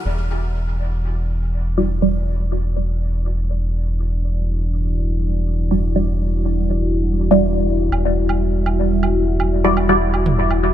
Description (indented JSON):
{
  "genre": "dub techno",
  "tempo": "122 BPM",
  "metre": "4/4",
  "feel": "straight",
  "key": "E minor",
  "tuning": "A4 = 439 Hz",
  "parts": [
    { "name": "dark analog pad", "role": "sustained chords", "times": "0.0-10.7 s", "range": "G3 to E5", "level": "-24 LUFS", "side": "equal", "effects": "chorus, phaser" },
    { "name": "filtered dub chord stab", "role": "stabs", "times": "0.0-10.7 s", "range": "G3 to D5", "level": "-20 LUFS", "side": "right 1 dB", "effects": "phaser, vintage 12-bit sampler grit, dub echo" },
    { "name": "round analog bass", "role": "bass", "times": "0.1-10.7 s", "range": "E1", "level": "-19 LUFS", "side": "equal", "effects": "tube saturation" },
    { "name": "electronic woodblock and toms", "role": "percussion", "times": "7.9-10.6 s", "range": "none", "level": "-27 LUFS", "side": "right 5 dB", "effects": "dub echo" }
  ],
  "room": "little or no reverb",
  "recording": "none",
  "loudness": "-17 LUFS",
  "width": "side -11 dB against mid",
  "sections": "0.1-10.7 A section",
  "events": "filter sweep on synth stab 0.1-10.7",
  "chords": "0.1 Em9"
}